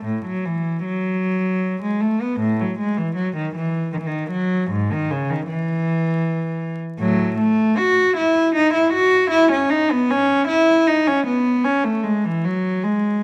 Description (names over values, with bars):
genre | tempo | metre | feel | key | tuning
classical, baroque-style suite movement for unaccompanied cello | 78 BPM | 3/4 | rubato | E major | A4 = 440 Hz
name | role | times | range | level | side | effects
rich cello | solo | 0.0-13.2 s | G#2 to F#4 | -20 LUFS | equal | none
room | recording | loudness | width
moderate recital hall reverb, RT60 1.4 s | close, detailed microphones, vinyl crackle | -20 LUFS | mono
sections
0.0-13.2 A section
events
none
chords
none